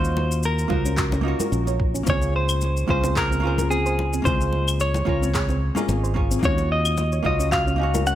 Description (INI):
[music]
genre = sunset chillout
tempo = 110 BPM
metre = 4/4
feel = swing 56% on 16ths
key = Eb dorian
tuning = A4 = 439 Hz
[part]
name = clean electric guitar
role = melody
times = 0.0-8.2 s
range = Ab4 to Gb5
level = -26 LUFS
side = left 1 dB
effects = tape echo
[part]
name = hollow-body jazz guitar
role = accompaniment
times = 0.0-8.2 s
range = Bb3 to F5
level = -29 LUFS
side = equal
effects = auto-pan, digital delay
[part]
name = fingered electric bass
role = bass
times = 0.0-8.2 s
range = Ab1 to Eb2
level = -23 LUFS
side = equal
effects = none
[part]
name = electronic shaker, handclaps and claves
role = drums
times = 0.0-8.2 s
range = none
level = -30 LUFS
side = left 2 dB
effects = studio reverb
[part]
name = congas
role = percussion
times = 0.2-8.0 s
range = none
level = -30 LUFS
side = left 4 dB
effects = none
[part]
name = soft round pluck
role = arpeggios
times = 0.7-8.1 s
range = C4 to Db5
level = -30 LUFS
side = right 3 dB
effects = chorus, digital delay
[part]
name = electronic kick drum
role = drums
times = 0.7-7.6 s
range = none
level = -26 LUFS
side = equal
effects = studio reverb
[sound]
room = light reverb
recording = none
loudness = -19 LUFS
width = side -12 dB against mid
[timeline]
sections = 0.0-8.2 A section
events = none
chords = 0.0 Ebm9; 2.1 Bbm9/Db; 6.4 Ebm9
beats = 0.43 0.98 1.52 | 2.07 2.61 3.16 3.70 | 4.25 4.79 5.34 5.88 | 6.43 6.98 7.52 8.07